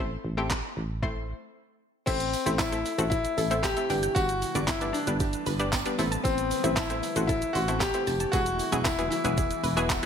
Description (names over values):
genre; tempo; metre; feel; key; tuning
dance-pop; 115 BPM; 4/4; straight; A dorian; A4 = 440 Hz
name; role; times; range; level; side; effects
analog pluck; accompaniment; 0.0-10.1 s; F#3 to C5; -33 LUFS; left 2 dB; chorus, sidechain pumping, slapback echo
solid FM bass; bass; 0.0-10.0 s; E1 to A1; -32 LUFS; right 1 dB; sidechain pumping
smooth R&B drum kit; drums; 0.5-10.1 s; crash cymbal, handclaps, hi-hat, kick drum, shaker, snare drum; -31 LUFS; right 1 dB; none
clear concert grand piano; melody; 2.1-10.1 s; C4 to G4; -29 LUFS; left 2 dB; digital delay, slapback echo
granular cloud pad; sustained chords; 3.3-10.1 s; C3 to B4; -37 LUFS; right 1 dB; built-in reverb, sidechain pumping
wide unison pluck; arpeggios; 2.1-10.1 s; E4 to A5; -37 LUFS; right 2 dB; phaser, sidechain pumping, digital delay, slapback echo
tambourine; percussion; 2.1-10.0 s; none; -44 LUFS; right 12 dB; none
room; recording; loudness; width
moderate recital hall reverb, RT60 1.4 s; big arena sound; -25 LUFS; side -8 dB against mid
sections
0.0-2.1 A section; 2.1-10.1 B section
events
break 1.6-2.1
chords
0.0 Am; 3.9 G; 6.0 Am; 8.3 Eadd9